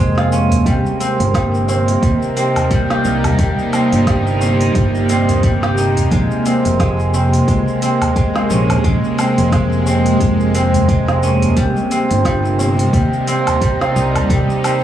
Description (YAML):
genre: organic downtempo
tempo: 88 BPM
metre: 4/4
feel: swing 57% on 16ths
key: unclear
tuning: A4 = 440 Hz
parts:
  - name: bowed-like drone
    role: sustained chords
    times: 0.0-14.8 s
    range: C3 to Eb4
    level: -18 LUFS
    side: equal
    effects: built-in reverb, phaser, sidechain pumping
  - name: guzheng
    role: arpeggios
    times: 0.0-14.8 s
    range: G3 to G4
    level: -18 LUFS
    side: right 1 dB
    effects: tape echo
  - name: fretless electric bass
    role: bass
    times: 0.0-14.4 s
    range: F1 to Eb2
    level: -17 LUFS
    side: equal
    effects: analog chorus
  - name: organic electronic drum kit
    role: drums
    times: 0.2-14.8 s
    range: hi-hat, shaker, snare drum, woodblock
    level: -25 LUFS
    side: right 1 dB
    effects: none
  - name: tabla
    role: percussion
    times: 0.3-14.3 s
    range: none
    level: -25 LUFS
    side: left 1 dB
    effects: none
  - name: electronic kick drum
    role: drums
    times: 0.7-14.5 s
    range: none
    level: -18 LUFS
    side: equal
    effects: none
room: light reverb, digital ambience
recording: dry, gritty hardware recording, small room ambience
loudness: -13 LUFS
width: side -11 dB against mid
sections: 0.0-14.8 A section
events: none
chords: 0.0 Bbm9; 0.7 Cm7; 6.1 Bbm9; 11.6 Cm7